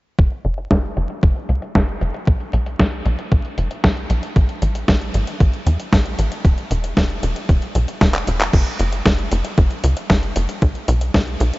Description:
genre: italo disco.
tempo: 115 BPM.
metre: 4/4.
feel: straight.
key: F# minor.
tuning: A4 = 440 Hz.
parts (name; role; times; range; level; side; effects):
tight sequencer bass; bass; 0.2-11.5 s; E1 to E2; -20 LUFS; equal; none.
clean 12-bit digital drum machine; drums; 0.2-11.6 s; crash cymbal, handclaps, hi-hat, snare drum; -22 LUFS; equal; overdrive, low-pass filter on hats, low-pass filter on snare, low-pass filter on cymbals, low-pass filter on room.
electronic kick drum; drums; 0.2-11.2 s; none; -16 LUFS; equal; overdrive.
room: light reverb.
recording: vinyl crackle, nothing above 7.7 kHz.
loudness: -16 LUFS.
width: side -20 dB against mid.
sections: 0.2-8.5 A section; 8.5-11.6 B section.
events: filter sweep on drum 0.2-8.5; filter sweep on analog synth bass 0.2-8.5; drum fill 8.1-8.5.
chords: none.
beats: | 0.19 0.71 1.23 1.75 | 2.27 2.80 3.32 3.84 | 4.36 4.88 5.40 5.93 | 6.45 6.97 7.49 8.01 | 8.54 9.06 9.58 10.10 | 10.62 11.14.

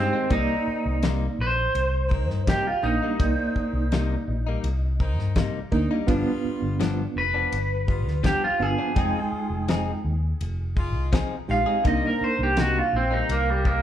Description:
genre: straight-eighth soul blues.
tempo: 83 BPM.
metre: 4/4.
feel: straight.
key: C minor.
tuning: A4 = 440 Hz.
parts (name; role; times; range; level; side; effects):
electric guitar through a small old amp; melody; 0.0-13.8 s; G3 to F5; -26 LUFS; right 1 dB; spring reverb.
reed electric piano; accompaniment; 0.0-13.0 s; Ab3 to G5; -27 LUFS; right 3 dB; fast tremolo.
bright horn section; sustained chords; 0.0-13.8 s; G3 to Bb4; -39 LUFS; left 1 dB; none.
vintage muted fingered electric bass; bass; 0.0-13.8 s; F1 to G2; -27 LUFS; left 1 dB; none.
direct-recorded clean electric guitar; stabs; 0.1-13.3 s; G2 to Ab4; -32 LUFS; left 5 dB; none.
damped 70s drum kit; drums; 0.3-13.8 s; kick drum, ride cymbal, snare drum; -26 LUFS; left 1 dB; none.
room: moderate large studio reverb, RT60 1.1 s.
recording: band playing live in one room.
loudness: -22 LUFS.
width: side -10 dB against mid.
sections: 0.0-13.8 A section.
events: clean electric guitar solo 0.0-13.8.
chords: 0.3 Cm7; 6.1 G7; 9.0 Fm7; 11.8 Cm7.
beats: | 0.31 1.03 1.75 2.48 | 3.20 3.92 4.64 5.36 | 6.08 6.80 7.53 8.25 | 8.97 9.69 10.41 11.13 | 11.85 12.57 13.29.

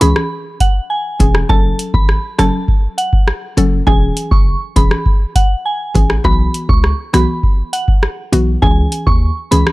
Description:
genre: dancehall.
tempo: 101 BPM.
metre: 4/4.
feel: straight.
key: C# minor.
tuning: A4 = 440 Hz.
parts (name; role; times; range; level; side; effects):
soft synth bell; melody; 0.0-9.7 s; F#5 to C#6; -20 LUFS; right 2 dB; chorus, tape echo.
mallet-like synth pluck; accompaniment; 0.0-9.7 s; E3 to A4; -18 LUFS; left 2 dB; chorus, sidechain pumping.
hard-hitting 808-style bass; bass; 0.0-9.6 s; E1 to D#2; -15 LUFS; equal; none.
booming analog drum machine; drums; 0.0-9.7 s; hi-hat, kick drum, rim click; -13 LUFS; equal; none.
room: little or no reverb.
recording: dark, warm production.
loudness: -12 LUFS.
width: side -20 dB against mid.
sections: 0.0-9.7 A section.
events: none.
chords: 0.0 C#m; 1.5 F#m; 3.9 E6; 6.2 Bsus4; 8.6 C#m.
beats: 0.31 0.90 | 1.50 2.09 2.68 3.28 | 3.87 4.47 5.06 5.65 | 6.25 6.84 7.44 8.03 | 8.62 9.22.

